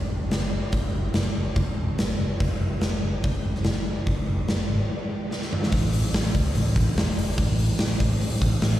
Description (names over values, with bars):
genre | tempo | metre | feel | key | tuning
hard rock | 144 BPM | 4/4 | straight | F# minor | A4 = 440 Hz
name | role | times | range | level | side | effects
picked electric bass | bass | 0.0-8.8 s | E1 to C#2 | -25 LUFS | equal | none
huge arena drum kit | drums | 0.3-8.7 s | hi-hat, kick drum, snare drum, toms | -24 LUFS | equal | none
room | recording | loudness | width
light reverb | live gig heard through the venue's PA, recital hall reverb | -22 LUFS | side -13 dB against mid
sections
0.0-5.7 A section; 5.7-8.8 B section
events
break 4.9-5.7; drum fill 5.3-5.7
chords
none